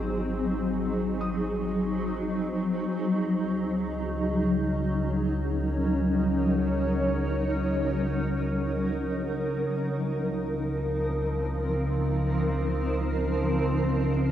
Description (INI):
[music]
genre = ambient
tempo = free time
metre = none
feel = none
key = unclear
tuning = A4 = 438 Hz
[part]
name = granular cloud pad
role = sustained chords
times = 0.0-14.3 s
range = F3 to Db5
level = -26 LUFS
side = equal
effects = built-in reverb, cassette tape
[part]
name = felt-muted upright piano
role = arpeggios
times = 0.0-5.0 s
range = Ab3 to Eb6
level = -44 LUFS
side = equal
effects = none
[part]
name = warm sub bass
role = bass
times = 0.0-14.3 s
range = Ab1 to Db2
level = -33 LUFS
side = equal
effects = transformer saturation
[part]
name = analog drone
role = drone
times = 4.1-14.3 s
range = Db3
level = -31 LUFS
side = equal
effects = chorus, cassette tape
[sound]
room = wet spring reverb, RT60 1.6 s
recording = home recording on cassette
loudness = -25 LUFS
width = side -11 dB against mid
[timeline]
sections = 0.0-2.9 A section; 2.9-14.3 B section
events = none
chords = 0.0 Ab7; 2.9 Ebm7/Db; 9.7 F7sus4/Db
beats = free time